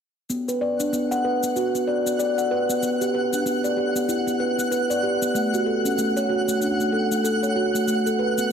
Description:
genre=organic downtempo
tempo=95 BPM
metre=4/4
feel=swing 59% on 16ths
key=B minor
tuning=A4 = 440 Hz
part: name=steel tongue drum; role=arpeggios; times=0.3-8.5 s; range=A3 to F#5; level=-21 LUFS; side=equal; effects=low-pass filter, digital delay
part: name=cabasa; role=drums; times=0.3-8.5 s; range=none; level=-33 LUFS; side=left 4 dB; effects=studio ambience
part: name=twinkling granular texture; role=texture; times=0.8-8.5 s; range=F#5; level=-28 LUFS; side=right 1 dB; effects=built-in reverb
room=moderate lush hall reverb, RT60 2.3 s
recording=none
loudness=-20 LUFS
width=side -7 dB against mid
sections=0.3-8.5 A section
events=none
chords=0.3 Bm; 2.8 Em7 (rootless); 5.3 Dmaj7 (rootless); 7.9 Asus2

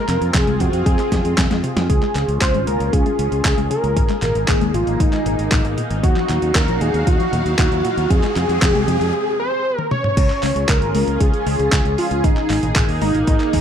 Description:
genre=italo disco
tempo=116 BPM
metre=4/4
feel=straight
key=Db major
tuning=A4 = 441 Hz
part: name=wide unison lead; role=melody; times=0.0-13.6 s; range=Eb4 to Db5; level=-21 LUFS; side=equal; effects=tape echo
part: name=lush unison pad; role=sustained chords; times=0.0-13.6 s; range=Bb3 to F5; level=-26 LUFS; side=equal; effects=chorus, phaser
part: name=analog pluck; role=arpeggios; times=0.0-13.6 s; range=Bb2 to Ab3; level=-27 LUFS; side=left 3 dB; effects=none
part: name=overdriven fingered electric bass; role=bass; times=0.1-13.6 s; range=Ab1 to F2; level=-21 LUFS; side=equal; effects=none
part: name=dusty soul sampler-style drum kit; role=drums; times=0.1-13.6 s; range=crash cymbal, handclaps, hi-hat, snare drum, toms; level=-24 LUFS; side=equal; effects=overdrive, studio reverb
part: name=electronic kick drum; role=drums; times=0.3-13.6 s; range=none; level=-18 LUFS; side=equal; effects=studio reverb
part: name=riser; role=sound effects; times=5.3-9.1 s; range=none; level=-29 LUFS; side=right 1 dB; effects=none
room=digital ambience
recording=dry, close 1970s-style studio recording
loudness=-15 LUFS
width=side -8 dB against mid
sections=0.0-1.9 A section; 1.9-10.2 B section; 10.2-13.6 C section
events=drum fill 1.1-1.9, 9.8-10.2; riser 5.3-9.1; break 9.1-10.2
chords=0.0 Fm; 1.9 Db; 4.0 Absus2; 6.0 Ebmadd9; 8.1 Fm; 10.2 Db; 12.2 Absus2

